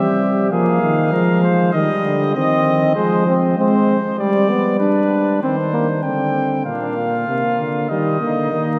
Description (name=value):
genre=classical, imitative canzona for brass ensemble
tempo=98 BPM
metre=4/4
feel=straight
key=F minor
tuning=A4 = 442 Hz
part: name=warm trumpet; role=melody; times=0.0-8.8 s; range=B4 to G5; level=-25 LUFS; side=equal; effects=none
part: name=warm flugelhorn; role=second line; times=0.0-1.7, 6.7-8.8 s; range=D4 to C5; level=-28 LUFS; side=equal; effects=none
part: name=warm trombone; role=accompaniment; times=0.0-8.8 s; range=G3 to D4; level=-22 LUFS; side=equal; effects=none
part: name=mellow euphonium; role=bass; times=0.0-8.8 s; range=Bb2 to Ab3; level=-21 LUFS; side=equal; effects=none
room=wet cathedral reverb, RT60 5.0 s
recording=vinyl crackle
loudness=-17 LUFS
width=mono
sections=0.0-6.7 A section; 6.7-8.8 B section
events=none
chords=0.0 C; 0.5 Fm; 1.7 Cm; 3.0 Fm; 4.2 G; 5.4 Cm/Eb; 6.7 Bb; 7.9 Eb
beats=0.51 1.12 | 1.74 2.35 2.96 3.58 | 4.19 4.81 5.43 6.05 | 6.67 7.29 7.90 8.52